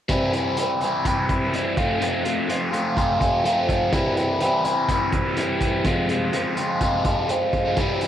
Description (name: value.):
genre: indie rock.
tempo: 125 BPM.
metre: 4/4.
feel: straight.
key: C major.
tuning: A4 = 440 Hz.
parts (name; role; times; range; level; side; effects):
overdriven electric guitar; riff; 0.1-8.1 s; F2 to F4; -20 LUFS; equal; phaser, cassette tape.
raw garage drum kit; drums; 0.1-8.1 s; hi-hat, kick drum; -27 LUFS; equal; cassette tape.
room: light reverb, small room ambience.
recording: home recording on cassette.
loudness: -20 LUFS.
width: side -10 dB against mid.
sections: 0.1-8.1 A section.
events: none.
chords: 0.1 C; 1.8 F; 3.9 C; 5.8 Fm.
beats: | 0.09 0.57 1.05 1.53 | 2.01 2.49 2.97 3.45 | 3.93 4.41 4.89 5.37 | 5.85 6.33 6.81 7.29 | 7.77.